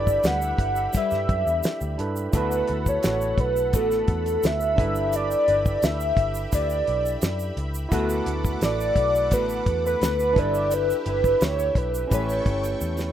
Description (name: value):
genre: indie pop, bedroom pop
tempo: 86 BPM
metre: 4/4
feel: straight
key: unclear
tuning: A4 = 440 Hz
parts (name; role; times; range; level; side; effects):
- warbly nostalgic lead; melody; 0.0-13.1 s; A4 to F#5; -23 LUFS; equal; wide subtle chorus, slapback echo
- nylon-string guitar; accompaniment; 0.0-13.1 s; D3 to B4; -34 LUFS; left 5 dB; analog chorus, warbly pitch drift
- overdriven tine electric piano; accompaniment; 0.0-13.1 s; C#4 to B4; -32 LUFS; right 4 dB; cassette tape
- lush unison pad; sustained chords; 0.0-13.1 s; G4 to D6; -37 LUFS; equal; chorus
- vintage muted picked electric bass; bass; 0.0-13.1 s; G1 to G2; -28 LUFS; equal; none
- damped 70s drum kit; drums; 0.1-13.1 s; hi-hat, kick drum, snare drum; -24 LUFS; equal; none
- egg shaker; percussion; 0.1-13.1 s; none; -38 LUFS; right 4 dB; none
room: light reverb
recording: rough home demo mix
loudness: -21 LUFS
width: side -10 dB against mid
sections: 0.0-13.1 A section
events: drum fill 12.8-13.1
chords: 0.0 G6; 2.3 D6; 4.8 G6; 7.9 D6; 10.4 G6; 12.1 A9